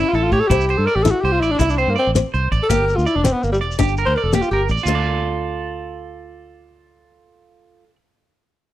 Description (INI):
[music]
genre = highlife guitar band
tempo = 110 BPM (dotted quarters)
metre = 12/8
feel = straight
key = D minor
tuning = A4 = 440 Hz
[part]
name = growling tenor saxophone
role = melody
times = 0.0-4.6 s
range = G3 to C5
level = -19 LUFS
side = left 1 dB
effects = slapback echo
[part]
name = picked steel-string acoustic guitar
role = accompaniment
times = 0.0-5.0 s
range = Bb3 to E4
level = -24 LUFS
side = left 9 dB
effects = none
[part]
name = electric guitar at the edge of break-up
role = arpeggios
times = 0.0-8.0 s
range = E4 to D5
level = -23 LUFS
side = right 6 dB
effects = slapback echo
[part]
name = fingered electric bass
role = bass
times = 0.0-7.9 s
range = E1 to A2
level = -22 LUFS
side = equal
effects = none
[part]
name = damped 70s drum kit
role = drums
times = 0.1-4.8 s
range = hi-hat, kick drum, snare drum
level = -23 LUFS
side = equal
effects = none
[part]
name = shekere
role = percussion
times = 0.5-5.0 s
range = none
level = -24 LUFS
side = left 1 dB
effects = none
[sound]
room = studio reverb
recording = dry, close 1970s-style studio recording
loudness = -16 LUFS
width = side -14 dB against mid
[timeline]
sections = 0.0-4.9 A section; 4.9-8.7 B section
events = tenor saxophone solo 0.0-4.9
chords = 0.0 A; 0.5 Cadd9; 2.7 Gm; 4.9 Dm